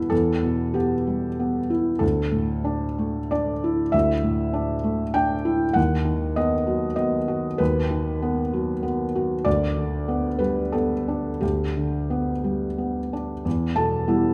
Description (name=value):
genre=neoclassical minimalist piano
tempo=86-100 BPM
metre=3/4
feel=rubato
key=E minor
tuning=A4 = 440 Hz
part: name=felt-muted upright piano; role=solo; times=0.0-14.3 s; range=D2 to A5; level=-24 LUFS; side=equal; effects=none
room=moderate recital hall reverb, RT60 1.7 s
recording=none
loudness=-24 LUFS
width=mono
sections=0.0-13.5 A section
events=none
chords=0.0 Em; 2.0 Dsus2; 5.8 B/D#; 9.5 G/D; 13.5 Em